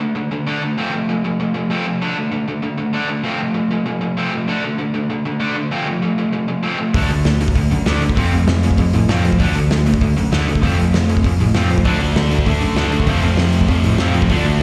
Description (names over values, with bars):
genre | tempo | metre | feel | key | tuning
punk rock | 195 BPM | 4/4 | straight | unclear | A4 = 440 Hz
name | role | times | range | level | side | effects
overdriven electric guitar | riff | 0.0-14.6 s | D3 to D4 | -21 LUFS | equal | slapback echo
cranked stack guitar | riff | 6.9-14.6 s | D3 to D4 | -28 LUFS | equal | none
tine electric piano | bass | 6.9-14.6 s | D2 to F3 | -19 LUFS | equal | none
loose indie drum kit | drums | 6.9-14.5 s | hi-hat, kick drum, snare drum | -23 LUFS | equal | none
overdriven electric guitar | riff | 11.9-14.6 s | F2 to D4 | -24 LUFS | equal | slapback echo
room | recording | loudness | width
light reverb | live gig heard through the venue's PA, recital hall reverb | -17 LUFS | mono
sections
0.0-14.6 A section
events
none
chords
0.0 D5; 0.8 F; 2.0 D5; 3.2 F; 4.5 D5; 5.7 F; 6.9 D5; 8.2 F; 9.4 D5; 10.6 F; 11.9 D5; 13.1 F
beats
0.15 0.46 | 0.77 1.08 1.39 1.70 | 2.01 2.32 2.63 2.94 | 3.25 3.56 3.86 4.17 | 4.48 4.79 5.10 5.40 | 5.71 6.02 6.33 6.63 | 6.94 7.25 7.56 7.87 | 8.17 8.48 8.79 9.10 | 9.40 9.71 10.02 10.32 | 10.63 10.94 11.24 11.55 | 11.86 12.16 12.47 12.78 | 13.08 13.39 13.70 14.00 | 14.31 14.61